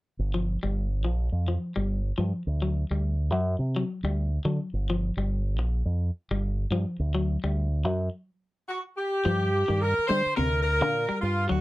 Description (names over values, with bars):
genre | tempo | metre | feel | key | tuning
afrobeat | 106 BPM | 4/4 | swing 55% on 16ths | G minor | A4 = 440 Hz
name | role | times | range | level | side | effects
fingered electric bass with an envelope filter | bass | 0.2-11.6 s | G1 to G3 | -26 LUFS | equal | none
electric guitar at the edge of break-up | arpeggios | 0.3-11.6 s | C3 to G3 | -31 LUFS | left 3 dB | none
warm horn section | melody | 8.7-11.6 s | F4 to C5 | -25 LUFS | equal | none
room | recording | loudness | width
light reverb | none | -25 LUFS | side -18 dB against mid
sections
0.2-9.3 A section; 9.3-11.6 B section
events
stop 8.1-9.3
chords
0.2 G7(no3); 2.5 D; 4.7 G7(no3); 7.0 D; 9.3 Gm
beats
| 0.19 0.76 1.33 1.90 | 2.46 3.03 3.60 4.17 | 4.73 5.30 5.87 6.43 | 7.00 7.56 8.12 8.69 | 9.25 9.82 10.38 10.95 | 11.51